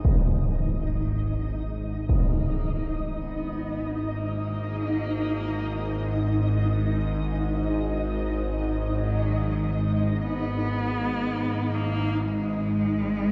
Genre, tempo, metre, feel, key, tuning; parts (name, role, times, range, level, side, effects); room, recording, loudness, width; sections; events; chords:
dark ambient drone; free time; G# minor; A4 = 440 Hz
bowed-like drone; drone; 0.0-13.3 s; G#1 to G#2; -30 LUFS; equal; built-in reverb, phaser
impact; percussion; 0.0-2.3 s; -28 LUFS; equal; low-pass filter on sfx
flickering grainy texture; texture; 0.0-13.3 s; D#4 to D#5; -34 LUFS; equal; built-in reverb, analog chorus, shimmer reverb
rich cello; melody; 0.6-13.3 s; F#3 to B3; -34 LUFS; equal; shimmer reverb, analog delay
moderate plate reverb, RT60 3.5 s; dreamy mix soaked in reverb, cassette tape; -27 LUFS; mono
0.1-13.3 A section
fade-in on cello 0.1-13.3
0.1 G#5